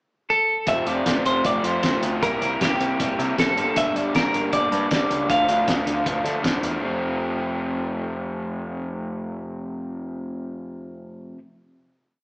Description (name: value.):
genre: indie rock.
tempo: 157 BPM.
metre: 4/4.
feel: straight.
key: F major.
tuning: A4 = 441 Hz.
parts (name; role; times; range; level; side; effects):
twelve-string electric guitar; melody; 0.3-6.4 s; G4 to F5; -22 LUFS; equal; none.
crunchy overdriven guitar; riff; 0.7-11.4 s; F2 to F4; -25 LUFS; equal; none.
growling picked electric bass; bass; 0.7-11.3 s; F1 to D3; -31 LUFS; equal; overdrive.
cloth-damped thuddy drum kit; drums; 0.7-6.7 s; hi-hat, kick drum, snare drum; -25 LUFS; equal; none.
room: moderate large studio reverb, RT60 1.4 s.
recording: band playing live in one room, small speaker sound.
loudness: -20 LUFS.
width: side -33 dB against mid.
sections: 0.0-0.7 pickup bar; 0.7-6.8 interlude; 6.8-9.9 final chord.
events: none.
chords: 0.0 N.C.; 0.7 F; 2.2 C5; 3.6 Gm; 5.3 Dm; 6.8 F.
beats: 0.29 | 0.68 1.06 1.45 1.84 | 2.23 2.61 3.00 3.38 | 3.77 4.15 4.53 4.91 | 5.30 5.68 6.06 6.44 | 6.82 7.20 7.58 7.96 | 8.35 8.73 9.11 9.49.